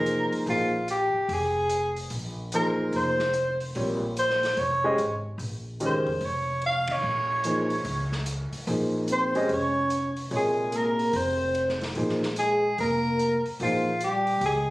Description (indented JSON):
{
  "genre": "modal jazz",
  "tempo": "146 BPM",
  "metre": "4/4",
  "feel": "swing 65% on 8ths",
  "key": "Bb dorian",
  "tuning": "A4 = 440 Hz",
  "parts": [
    { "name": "mellow soprano saxophone", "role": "melody", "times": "0.0-14.7 s", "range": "F4 to F5", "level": "-25 LUFS", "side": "equal", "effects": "none" },
    { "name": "warm grand piano", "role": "accompaniment", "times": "0.0-13.8 s", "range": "C3 to Eb5", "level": "-27 LUFS", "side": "equal", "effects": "none" },
    { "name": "upright bass", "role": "bass", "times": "0.0-14.7 s", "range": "F1 to F2", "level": "-34 LUFS", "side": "equal", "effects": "none" },
    { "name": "vintage drum kit", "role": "drums", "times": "0.1-14.5 s", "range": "hi-hat, kick drum, ride cymbal, snare drum", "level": "-38 LUFS", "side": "equal", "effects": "none" },
    { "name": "breathy trombone", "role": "second line", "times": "9.1-14.7 s", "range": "F3 to Db4", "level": "-30 LUFS", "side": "equal", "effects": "none" }
  ],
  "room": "moderate club reverb, RT60 0.6 s",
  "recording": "recorded on a phone in the room, studio reverb",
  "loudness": "-24 LUFS",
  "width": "side -18 dB against mid",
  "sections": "0.0-14.7 A section",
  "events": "band accent 6.8",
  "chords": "0.0 Bbm9",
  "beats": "0.06 | 0.47 0.88 1.29 1.70 | 2.11 2.52 2.93 3.34 | 3.75 4.16 4.57 4.98 | 5.39 5.80 6.21 6.62 | 7.03 7.44 7.85 8.26 | 8.67 9.09 9.49 9.90 | 10.31 10.72 11.13 11.54 | 11.96 12.37 12.78 13.19 | 13.60 14.01 14.42"
}